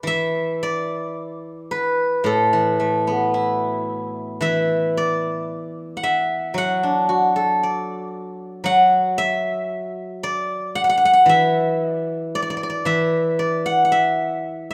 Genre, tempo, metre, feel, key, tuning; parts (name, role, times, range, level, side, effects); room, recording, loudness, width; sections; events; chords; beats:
chinese traditional, Chinese solo plucked strings; 57 BPM; 4/4; rubato; A4 = 437 Hz
steel-string zither; solo; 0.0-14.7 s; A2 to F#5; -21 LUFS; equal
moderate recital hall reverb, RT60 1.7 s; -20 LUFS; mono
0.1-14.7 A section
| 0.05 1.16 2.25 3.33 | 4.42 5.49 6.56 7.61 | 8.65 9.69 10.74 11.79 | 12.85 13.90